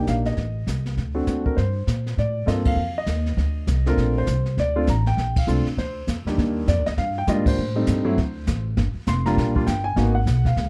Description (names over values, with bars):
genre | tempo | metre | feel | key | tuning
jazz piano trio | 200 BPM | 4/4 | swing 62% on 8ths | Bb major, Eb major from 6.4 s | A4 = 440 Hz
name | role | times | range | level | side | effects
warm concert grand piano | melody | 0.0-10.7 s | Eb2 to C6 | -27 LUFS | equal | none
upright bass | bass | 0.0-10.7 s | F1 to Bb2 | -25 LUFS | equal | none
jazz brush drum kit | drums | 0.1-10.7 s | brushed snare drum, crash cymbal, hi-hat, kick drum, ride cymbal, snare drum | -30 LUFS | equal | none
room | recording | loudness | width
light reverb | dark, warm production | -23 LUFS | mono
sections
0.0-6.4 A section; 6.4-10.7 B section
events
band accent 2.6, 5.3, 7.4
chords
0.4 Adim; 1.0 D7; 1.6 Gm11; 2.8 F7(no3); 4.0 Bbmaj9; 5.8 Bb69 (rootless); 6.4 Ebmaj9; 7.6 Am7b5; 8.2 D5; 8.8 Gm7; 10.0 Abm7